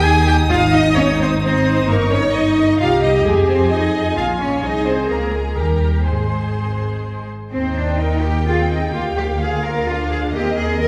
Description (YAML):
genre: quick classical-period movement for string orchestra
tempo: 129 BPM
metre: 3/4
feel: rubato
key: Ab major, Eb major from 7.5 s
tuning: A4 = 444 Hz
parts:
  - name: warm symphonic violin section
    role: melody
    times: 0.0-10.9 s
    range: Eb5 to Eb6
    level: -31 LUFS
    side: equal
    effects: none
  - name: rich symphonic violin section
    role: second line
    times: 0.0-10.9 s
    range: G4 to Ab5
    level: -24 LUFS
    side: equal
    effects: none
  - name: clear symphonic viola section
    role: accompaniment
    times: 0.0-10.9 s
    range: Bb3 to C5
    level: -24 LUFS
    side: equal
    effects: none
  - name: clear symphonic cello section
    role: bass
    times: 0.0-10.9 s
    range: G3 to Bb4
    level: -24 LUFS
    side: equal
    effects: none
  - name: rich symphonic double bass section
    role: bass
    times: 0.0-10.9 s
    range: G1 to F2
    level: -22 LUFS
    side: equal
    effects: none
room: wet recital hall reverb, RT60 1.6 s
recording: heard from further back in the room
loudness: -17 LUFS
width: mono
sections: 0.0-7.5 A section; 7.5-10.9 B section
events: none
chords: 0.5 Ab; 1.9 Gdim; 2.8 Cm7; 3.3 Fm7; 4.2 Bbm7; 4.6 Ab/C; 5.1 Bbm/Db; 5.6 Eb; 6.1 Ab; 7.5 Eb; 8.5 Fm7/Eb; 8.9 Bb/D; 10.3 Eb